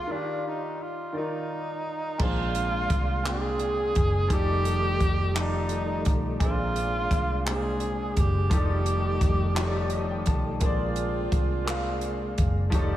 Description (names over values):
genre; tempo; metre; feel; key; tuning
slow six-eight R&B; 57 BPM (dotted quarters); 6/8; straight; unclear; A4 = 440 Hz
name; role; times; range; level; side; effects
breathy tenor saxophone; melody; 0.0-10.2 s; D4 to Ab4; -30 LUFS; right 1 dB; diffuse ambient delay
clear grand piano; accompaniment; 0.0-13.0 s; Bb2 to A5; -32 LUFS; left 2 dB; analog chorus
vintage muted fingered electric bass; bass; 0.0-13.0 s; F1 to C2; -28 LUFS; equal; none
tonewheel organ; sustained chords; 2.2-13.0 s; C3 to Eb4; -36 LUFS; equal; chorus vibrato, slow rotary speaker
compact cocktail drum kit; drums; 2.2-12.9 s; crash cymbal, handclaps, hi-hat, kick drum; -28 LUFS; equal; none
warm horn section; stabs; 10.6-13.0 s; G3 to G4; -35 LUFS; right 7 dB; diffuse ambient delay
room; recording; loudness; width
moderate plate reverb, RT60 2.6 s; dreamy mix soaked in reverb, small room ambience; -24 LUFS; side -13 dB against mid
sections
0.0-2.2 A section; 2.2-13.0 B section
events
grand piano fill 9.6-10.6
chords
0.1 Ebmaj9; 2.2 Bb9; 4.3 F13; 6.4 Bb9; 8.5 F13; 10.6 Bb9